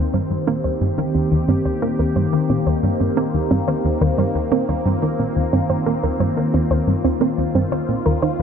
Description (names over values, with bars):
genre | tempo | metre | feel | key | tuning
ambient, sequencer-driven space music | 89 BPM | 4/4 | straight | Eb major | A4 = 440 Hz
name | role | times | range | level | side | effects
phased analog pad | sustained chords | 0.0-8.4 s | Eb3 to C5 | -21 LUFS | left 1 dB | phaser, chorus
soft round pluck | arpeggios | 0.0-8.3 s | C4 to C5 | -24 LUFS | moving between left 1 dB and right 8 dB | chorus, auto-pan, tape echo
analog pluck | riff | 0.0-8.4 s | Eb2 to Bb3 | -20 LUFS | equal | chorus, tape echo
room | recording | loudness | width
moderate huge ambient reverb, RT60 7.7 s | none | -17 LUFS | side -7 dB against mid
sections
0.0-8.4 A section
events
filter sweep on synth arpeggio sound 0.0-8.4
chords
0.0 Eb6